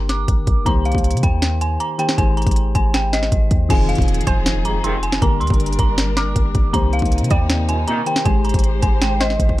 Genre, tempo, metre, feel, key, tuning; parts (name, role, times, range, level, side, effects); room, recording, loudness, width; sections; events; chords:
hip hop, trap; 158 BPM; 4/4; half-time; C minor; A4 = 445 Hz
dark detuned synth bell; melody; 0.0-9.6 s; Eb5 to D6; -24 LUFS; right 1 dB; chorus, low-pass filter
soft electric-piano-like synth keys; accompaniment; 0.0-9.6 s; D3 to C5; -25 LUFS; left 3 dB; chorus, low-pass filter
clean 808-style bass; bass; 0.0-9.6 s; F1 to C3; -19 LUFS; equal
trap drum kit; drums; 0.1-9.6 s; crash cymbal, hi-hat, kick drum, snare drum; -19 LUFS; equal
dark studio string section; sustained chords; 3.7-9.6 s; C3 to C5; -28 LUFS; left 2 dB
impact; sound effects; 3.7-5.2 s; -28 LUFS; equal
warbly dusty pluck; second line; 4.3-9.6 s; Bb4 to D5; -29 LUFS; right 2 dB; chorus, tape echo
warm brass ensemble; stabs; 4.7-5.0, 7.7-8.0 s; Ab2 to Eb3; -25 LUFS; right 2 dB
little or no reverb; dark, warm production; -15 LUFS; side -16 dB against mid
0.0-3.7 A section; 3.7-9.6 B section
impact 3.7-5.2; drum fill 9.4
0.0 Gm; 0.7 Cm7; 2.2 Abmaj7; 3.7 Fm7; 5.2 Gm; 6.7 Cm7; 8.3 Abmaj7